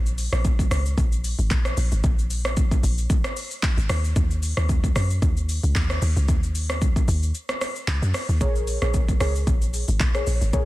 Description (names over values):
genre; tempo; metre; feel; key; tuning
amapiano; 113 BPM; 4/4; swing 55% on 16ths; unclear; A4 = 440 Hz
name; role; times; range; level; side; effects
deep log drum bass; bass; 0.0-10.7 s; Ab1 to Gb2; -22 LUFS; equal; none
deep house drum kit; drums; 0.1-10.7 s; handclaps, hi-hat, kick drum, rim click, shaker; -23 LUFS; equal; vintage 12-bit sampler grit
deep mellow chord stab; stabs; 8.4-10.7 s; Ab4 to Db5; -29 LUFS; equal; chorus, digital delay
room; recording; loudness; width
little or no reverb; dense, heavily limited modern master; -20 LUFS; side -17 dB against mid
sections
0.0-10.7 A section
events
break 7.3-8.4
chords
0.0 N.C.; 8.4 Bbm7